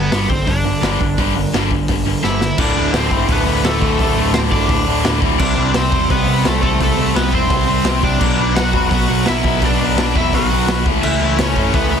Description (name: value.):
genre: punk rock.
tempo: 170 BPM.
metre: 4/4.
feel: straight.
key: D mixolydian.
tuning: A4 = 438 Hz.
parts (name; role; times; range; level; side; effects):
overdriven semi-hollow guitar; melody; 0.0-12.0 s; A3 to F#5; -21 LUFS; right 1 dB; digital delay.
sludgy distorted guitar; riff; 0.0-12.0 s; D2 to C4; -21 LUFS; right 16 dB; overdrive.
tight distorted guitar; riff; 0.0-12.0 s; D2 to C4; -20 LUFS; left 17 dB; distortion.
overdriven picked electric bass; bass; 0.0-12.0 s; D1 to C#2; -21 LUFS; equal; none.
raw garage drum kit; drums; 0.1-11.8 s; crash cymbal, hi-hat, kick drum, snare drum; -19 LUFS; equal; none.
room: little or no reverb.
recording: dense, heavily limited modern master.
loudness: -13 LUFS.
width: side -7 dB against mid.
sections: 0.0-2.6 A section; 2.6-12.0 B section.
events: drum fill 2.2-2.6.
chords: 0.0 G; 2.6 D5; 5.4 C5; 8.2 Bm; 10.9 A.